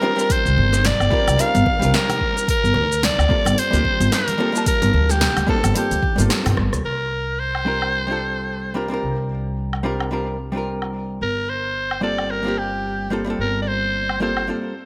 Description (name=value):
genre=sunset chillout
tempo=110 BPM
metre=4/4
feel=swing 57% on 16ths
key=G minor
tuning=A4 = 442 Hz
part: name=raspy soprano saxophone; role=melody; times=0.0-14.5 s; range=G4 to F5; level=-24 LUFS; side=equal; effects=digital delay
part: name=hollow-body jazz guitar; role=accompaniment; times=0.0-14.7 s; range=G3 to A5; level=-27 LUFS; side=equal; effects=digital delay
part: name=bongos and congas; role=percussion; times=0.0-6.8 s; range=none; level=-33 LUFS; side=equal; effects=none
part: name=deep house drum kit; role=drums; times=0.2-14.5 s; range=hi-hat, rim click, shaker, snare drum, woodblock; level=-27 LUFS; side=equal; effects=gated reverb
part: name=electronic kick drum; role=drums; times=0.3-6.7 s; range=none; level=-25 LUFS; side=equal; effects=none
part: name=upright bass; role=bass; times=0.5-14.5 s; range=G1 to G2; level=-25 LUFS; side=equal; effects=none
room=moderate plate reverb, RT60 1.6 s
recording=bright 1980s-style digital production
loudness=-20 LUFS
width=mono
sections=0.0-6.8 A section; 6.8-14.9 B section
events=drum fill 6.3-6.8; break 14.5-14.9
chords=0.0 Gm11; 6.8 C9sus4; 11.2 Gm11